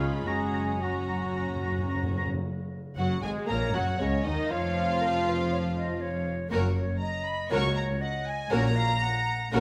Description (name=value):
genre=quick classical-period movement for symphony orchestra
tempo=108-123 BPM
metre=4/4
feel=rubato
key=F# major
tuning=A4 = 438 Hz
part: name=warm studio violin section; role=melody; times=0.0-9.6 s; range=C#5 to C#6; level=-36 LUFS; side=equal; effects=none
part: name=clear oboe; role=second line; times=0.0-2.3 s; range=E#5 to A#5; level=-39 LUFS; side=equal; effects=none
part: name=rich studio violin section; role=second line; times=0.0-9.6 s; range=C#4 to C#5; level=-38 LUFS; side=equal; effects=none
part: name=silver concert flute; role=second line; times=0.0-9.6 s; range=A#4 to C#6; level=-38 LUFS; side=equal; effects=none
part: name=rich studio viola section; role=accompaniment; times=0.0-9.6 s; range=C#3 to F#4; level=-36 LUFS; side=equal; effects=none
part: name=warm French horn section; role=sustained chords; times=0.0-9.6 s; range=C#3 to C#4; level=-39 LUFS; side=equal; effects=none
part: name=dark trumpet section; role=stabs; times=0.0-9.6 s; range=C#4 to A#4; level=-39 LUFS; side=equal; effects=none
part: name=dark studio double bass section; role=bass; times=0.0-9.6 s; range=E#1 to D#2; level=-36 LUFS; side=equal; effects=none
part: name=warm studio cello section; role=bass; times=0.0-9.6 s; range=C#2 to C#3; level=-36 LUFS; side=equal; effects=none
part: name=timpani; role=percussion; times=0.3-2.4 s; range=F#2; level=-38 LUFS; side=equal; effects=none
room=moderate scoring stage reverb, RT60 1.9 s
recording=none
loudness=-28 LUFS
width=mono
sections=0.0-2.5 A section; 2.5-9.6 B section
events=timpani fill 0.3-2.5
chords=0.3 F#; 4.5 C#/E#; 6.5 F#; 8.5 F#/A#